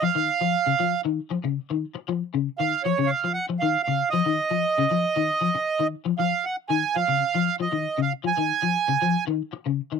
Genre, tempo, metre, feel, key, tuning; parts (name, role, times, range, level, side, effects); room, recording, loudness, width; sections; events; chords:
afrobeat; 117 BPM; 4/4; straight; A4 = 440 Hz
accordion; melody; 0.0-9.2 s; Db5 to Ab5; -23 LUFS; right 6 dB
electric guitar at the edge of break-up; arpeggios; 0.0-10.0 s; Db3 to F3; -25 LUFS; left 9 dB; ensemble chorus
little or no reverb; dry, close 1970s-style studio recording; -22 LUFS; side -6 dB against mid
0.0-10.0 A section
0.0 Dbadd9